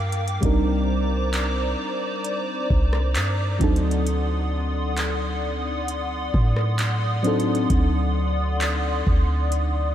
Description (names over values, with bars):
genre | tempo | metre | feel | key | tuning
contemporary R&B | 66 BPM | 4/4 | straight | unclear | A4 = 438 Hz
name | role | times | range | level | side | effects
mellow FM electric piano | accompaniment | 0.0-9.9 s | F#3 to Bb4 | -27 LUFS | left 1 dB | chorus, phaser
hollow soft pad | sustained chords | 0.0-9.9 s | Bb4 to Eb6 | -28 LUFS | equal | ensemble chorus, sidechain pumping
warm 808-style bass | bass | 0.0-9.9 s | C2 to A2 | -23 LUFS | equal | none
booming analog drum machine | drums | 0.1-9.7 s | handclaps, hi-hat, kick drum, rim click | -26 LUFS | equal | overdrive
room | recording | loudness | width
moderate huge ambient reverb, RT60 4.8 s | dreamy mix soaked in reverb | -20 LUFS | side -11 dB against mid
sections
0.0-9.9 A section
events
none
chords
0.4 Cm9; 3.6 D7b9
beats
| 0.43 1.34 2.25 3.15 | 4.07 4.97 5.88 6.79 | 7.70 8.61 9.52